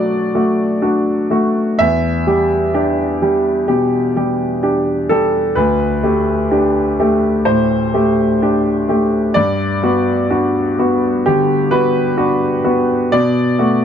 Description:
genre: neoclassical minimalist piano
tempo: 64 BPM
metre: 4/4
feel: rubato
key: G major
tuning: A4 = 440 Hz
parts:
  - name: clear grand piano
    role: solo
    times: 0.0-13.8 s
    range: D2 to E5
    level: -13 LUFS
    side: equal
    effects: none
room: light reverb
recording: dark, warm production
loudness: -13 LUFS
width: side -8 dB against mid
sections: 0.0-13.8 A section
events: none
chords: 0.0 Bm7; 1.8 Em7; 5.6 Dsus4; 9.3 Gmaj7; 13.1 Bm7

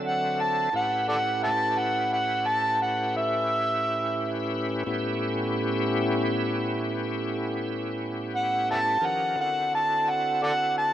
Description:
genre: blues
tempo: 58 BPM (dotted quarters)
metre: 12/8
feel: straight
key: unclear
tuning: A4 = 440 Hz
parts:
  - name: bright tonewheel organ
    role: sustained chords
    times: 0.0-10.9 s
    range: A2 to E5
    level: -28 LUFS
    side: equal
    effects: overdrive, chorus vibrato, slow rotary speaker
  - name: overdriven harmonica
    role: melody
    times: 0.1-10.9 s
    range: A4 to A5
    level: -24 LUFS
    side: right 1 dB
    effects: none
room: wet lush hall reverb, RT60 2.4 s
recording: rough home demo mix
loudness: -24 LUFS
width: side -11 dB against mid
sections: 0.0-10.9 A section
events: none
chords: 0.0 D9; 0.7 A9; 9.0 D9

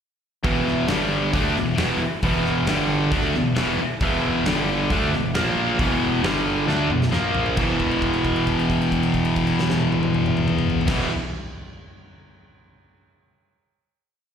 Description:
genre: hard rock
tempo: 135 BPM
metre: 4/4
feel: straight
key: E phrygian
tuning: A4 = 440 Hz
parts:
  - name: cranked stack guitar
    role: riff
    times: 0.4-11.1 s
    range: E2 to D4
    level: -24 LUFS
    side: right 8 dB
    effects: overdrive, slapback echo
  - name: heavy high-gain guitar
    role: riff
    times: 0.4-11.1 s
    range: E2 to D4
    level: -23 LUFS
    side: left 8 dB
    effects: distortion, slapback echo
  - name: fuzz fingered electric bass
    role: bass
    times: 0.4-11.1 s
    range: E1 to D2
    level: -27 LUFS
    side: equal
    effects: overdrive
  - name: huge arena drum kit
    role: drums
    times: 0.4-11.0 s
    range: crash cymbal, hi-hat, kick drum, snare drum, toms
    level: -27 LUFS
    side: left 1 dB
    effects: none
room: light reverb, studio reverb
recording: live gig heard through the venue's PA, recital hall reverb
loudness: -19 LUFS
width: side -8 dB against mid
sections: 0.4-7.6 riff; 7.6-11.1 final chord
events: drum fill 6.7-7.6; held note 7.6-10.9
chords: 0.4 E5; 0.9 G5; 1.3 E5; 2.7 G5; 3.1 E5; 4.5 G5; 4.9 E5; 5.3 A#5; 5.8 E5; 6.2 G5; 6.7 E5; 7.1 A#5; 7.6 E5

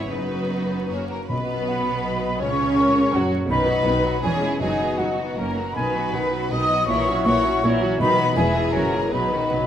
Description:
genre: classical, dramatic, fast romantic movement for symphony orchestra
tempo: 147-168 BPM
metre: 3/4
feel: rubato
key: B major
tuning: A4 = 442 Hz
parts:
  - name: rich symphonic violin section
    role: melody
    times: 0.0-9.7 s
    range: D#4 to C#5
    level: -32 LUFS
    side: equal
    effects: none
  - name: warm symphonic violin section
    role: second line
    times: 0.0-9.7 s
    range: F#4 to D#5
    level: -30 LUFS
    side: left 2 dB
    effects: none
  - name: warm symphonic viola section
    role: accompaniment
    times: 0.0-9.7 s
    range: D#3 to F#4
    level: -28 LUFS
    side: right 2 dB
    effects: none
  - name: concert harp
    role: arpeggios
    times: 0.0-9.7 s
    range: E2 to C#5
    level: -31 LUFS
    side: left 5 dB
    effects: none
  - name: clear symphonic double bass section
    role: bass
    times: 0.0-9.7 s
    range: E1 to C#2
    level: -30 LUFS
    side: right 2 dB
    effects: none
  - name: warm symphonic cello section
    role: bass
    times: 0.0-9.7 s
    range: E2 to C#3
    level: -27 LUFS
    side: right 2 dB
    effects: none
  - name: small flute group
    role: second line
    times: 1.1-9.7 s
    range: F#5 to D#6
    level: -25 LUFS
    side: left 1 dB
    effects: none
  - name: mellow clarinet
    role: second line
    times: 1.3-9.7 s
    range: A#4 to G#5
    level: -29 LUFS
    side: left 2 dB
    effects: none
  - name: mellow French horn section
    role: sustained chords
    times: 1.3-9.7 s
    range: F#3 to E4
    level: -28 LUFS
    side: left 2 dB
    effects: none
  - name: timpani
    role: percussion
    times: 1.3-1.8, 4.6-5.1, 8.0-9.7 s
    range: F#2 to B2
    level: -34 LUFS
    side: right 1 dB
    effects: none
room: wet scoring stage reverb, RT60 1.7 s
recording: vinyl crackle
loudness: -19 LUFS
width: side -10 dB against mid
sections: 0.0-1.3 A section; 1.3-9.7 B section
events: timpani fill 9.1-9.7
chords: 0.1 B/F#; 0.9 F#; 1.3 B; 2.4 F#/C#; 3.5 B; 4.2 C#m/E; 4.6 B/F#; 5.4 F#; 5.8 B; 6.9 F#7/A#; 8.0 B; 8.4 E; 8.7 F#9; 9.1 B

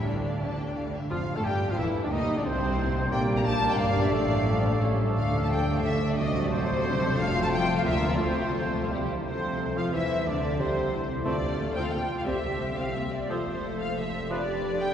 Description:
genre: classical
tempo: 178 BPM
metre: 3/4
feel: rubato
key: D minor, F major from 7.2 s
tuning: A4 = 438 Hz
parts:
  - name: warm symphonic violin section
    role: melody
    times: 0.0-14.9 s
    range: A4 to Bb5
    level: -35 LUFS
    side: left 1 dB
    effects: none
  - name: rich symphonic violin section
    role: second line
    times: 0.0-14.9 s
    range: C4 to G5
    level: -35 LUFS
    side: left 1 dB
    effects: none
  - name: warm symphonic viola section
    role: accompaniment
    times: 0.0-14.9 s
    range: F3 to A4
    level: -36 LUFS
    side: right 1 dB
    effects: none
  - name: concert harp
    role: arpeggios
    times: 0.0-14.9 s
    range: G2 to C6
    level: -35 LUFS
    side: left 4 dB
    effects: none
  - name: rich symphonic cello section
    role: bass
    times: 0.0-14.9 s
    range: C2 to F3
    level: -33 LUFS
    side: right 1 dB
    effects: none
  - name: rich symphonic double bass section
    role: bass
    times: 0.1-14.9 s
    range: E1 to F2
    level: -32 LUFS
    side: right 1 dB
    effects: none
  - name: dark clarinet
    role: second line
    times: 1.1-14.4 s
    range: C4 to A4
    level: -37 LUFS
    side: left 1 dB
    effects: none
  - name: small flute group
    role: second line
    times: 1.1-14.9 s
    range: C5 to Bb5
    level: -35 LUFS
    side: equal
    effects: none
  - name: warm oboe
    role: second line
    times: 1.1-14.4 s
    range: Bb4 to A5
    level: -38 LUFS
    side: right 1 dB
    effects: none
  - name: clear bassoon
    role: accompaniment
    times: 1.1-14.4 s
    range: C3 to Bb3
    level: -35 LUFS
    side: equal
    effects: none
  - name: mellow French horn section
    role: sustained chords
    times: 1.1-14.9 s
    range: C3 to C5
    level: -34 LUFS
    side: left 1 dB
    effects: none
room: wet cathedral reverb, RT60 6.3 s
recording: heard from further back in the room, nothing above 11.0 kHz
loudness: -24 LUFS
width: side -9 dB against mid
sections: 0.0-1.1 A section; 1.1-9.3 B section; 9.3-14.9 A section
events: none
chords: 0.1 Dm; 1.1 Dm/F; 2.1 D7; 3.1 Gm/Bb; 3.8 Gm; 4.1 Dm/A; 4.8 A; 5.2 Dm; 6.2 D7/C; 7.2 F; 7.8 Bb/D; 8.2 F/C; 8.9 C; 9.3 F/C; 10.3 C; 11.3 Dm7; 12.3 C; 13.3 F; 14.3 G7/F

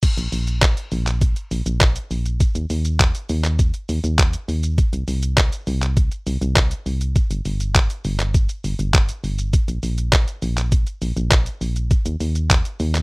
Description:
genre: dance-pop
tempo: 101 BPM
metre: 4/4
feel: straight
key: unclear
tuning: A4 = 444 Hz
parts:
  - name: detuned 8-bit digital drum machine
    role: drums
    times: 0.0-13.0 s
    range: crash cymbal, handclaps, hi-hat, kick drum, shaker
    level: -18 LUFS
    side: equal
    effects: none
  - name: solid FM bass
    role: bass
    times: 0.2-13.0 s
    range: G1 to Eb2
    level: -21 LUFS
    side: equal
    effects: sidechain pumping
room: little or no reverb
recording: rough home demo mix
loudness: -18 LUFS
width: side -31 dB against mid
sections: 0.0-13.0 A section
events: none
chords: none

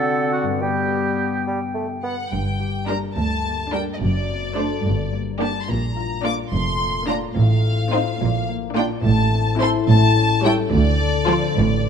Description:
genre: cinematic, playful, whimsical film cue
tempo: 71 BPM (dotted quarters)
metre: 6/8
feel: straight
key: G minor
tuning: A4 = 439 Hz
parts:
  - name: clear clarinet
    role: second line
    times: 0.0-2.0 s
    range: B3 to C4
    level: -28 LUFS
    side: left 3 dB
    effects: none
  - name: concert flute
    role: second line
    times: 0.0-2.0 s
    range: F#5 to G5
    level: -28 LUFS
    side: equal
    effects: none
  - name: warm oboe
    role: second line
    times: 0.0-1.5 s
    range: F#4 to A4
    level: -26 LUFS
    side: right 4 dB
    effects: none
  - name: warm bassoon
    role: accompaniment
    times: 0.0-2.2 s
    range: D3 to B3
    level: -26 LUFS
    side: right 4 dB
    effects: none
  - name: concert harp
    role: arpeggios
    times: 0.0-11.9 s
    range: F#2 to A4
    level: -25 LUFS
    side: left 9 dB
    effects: none
  - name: rich studio violin section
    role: melody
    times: 2.0-11.8 s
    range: D5 to D6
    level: -25 LUFS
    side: left 3 dB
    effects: none
  - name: rich studio double bass section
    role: bass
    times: 2.3-11.9 s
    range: F1 to D2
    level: -22 LUFS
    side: right 3 dB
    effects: none
  - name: warm studio cello section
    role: bass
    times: 2.3-11.9 s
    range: D2 to Bb2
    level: -24 LUFS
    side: right 3 dB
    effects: none
  - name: clear studio violin section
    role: second line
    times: 2.9-11.5 s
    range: D4 to D5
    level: -28 LUFS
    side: left 3 dB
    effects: none
  - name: rich studio viola section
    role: accompaniment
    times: 2.9-11.5 s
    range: F3 to F4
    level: -26 LUFS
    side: right 3 dB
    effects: none
room: moderate scoring stage reverb, RT60 1.9 s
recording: none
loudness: -18 LUFS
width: side -7 dB against mid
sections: 0.0-2.3 A section; 2.3-11.9 B section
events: none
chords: 0.0 D7; 0.6 G; 2.3 Gm; 4.0 D7/F#; 4.9 Gm; 5.7 Bb; 7.4 F7/A; 8.2 Bb; 9.0 Am; 9.9 A7; 10.7 Dm7

